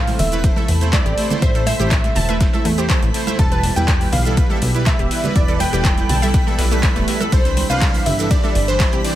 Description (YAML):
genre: progressive house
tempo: 122 BPM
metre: 4/4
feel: straight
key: A minor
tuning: A4 = 441 Hz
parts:
  - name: plucky unison lead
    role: melody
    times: 0.0-9.2 s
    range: C5 to A5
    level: -24 LUFS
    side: equal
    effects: tape echo
  - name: lush unison pad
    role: sustained chords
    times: 0.0-9.2 s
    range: B2 to A4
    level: -27 LUFS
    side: equal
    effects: chorus, sidechain pumping
  - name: soft supersaw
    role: stabs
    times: 0.0-9.1 s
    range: E3 to E5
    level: -25 LUFS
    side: right 3 dB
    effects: sidechain pumping, tape echo
  - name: plucky analog bass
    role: bass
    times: 0.0-9.0 s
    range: E1 to E2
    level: -20 LUFS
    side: equal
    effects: sidechain pumping
  - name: twinkling granular texture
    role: texture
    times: 0.2-9.2 s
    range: B5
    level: -32 LUFS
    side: right 4 dB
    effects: built-in reverb, sidechain pumping
  - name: deep house drum kit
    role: drums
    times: 0.1-9.1 s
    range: handclaps, hi-hat, ride cymbal, shaker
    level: -25 LUFS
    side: equal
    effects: overdrive, sidechain pumping on hats, sidechain pumping on perc, sidechain pumping on cymbals
  - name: congas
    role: percussion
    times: 0.1-8.9 s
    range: none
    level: -28 LUFS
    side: right 4 dB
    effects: sidechain pumping on perc
  - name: dusty soul sampler-style drum kit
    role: drums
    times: 0.2-9.2 s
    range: hi-hat, ride cymbal, snare drum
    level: -35 LUFS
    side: right 2 dB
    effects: none
  - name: electronic kick drum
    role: drums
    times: 0.4-8.9 s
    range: none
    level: -18 LUFS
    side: equal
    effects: overdrive
  - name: wide unison pluck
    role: arpeggios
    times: 0.6-9.0 s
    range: A3 to A5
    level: -27 LUFS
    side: right 1 dB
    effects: sidechain pumping, tape echo
room: little or no reverb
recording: none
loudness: -14 LUFS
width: side -13 dB against mid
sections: 0.0-9.2 A section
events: none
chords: 0.0 Am; 3.4 Em; 7.3 Cadd9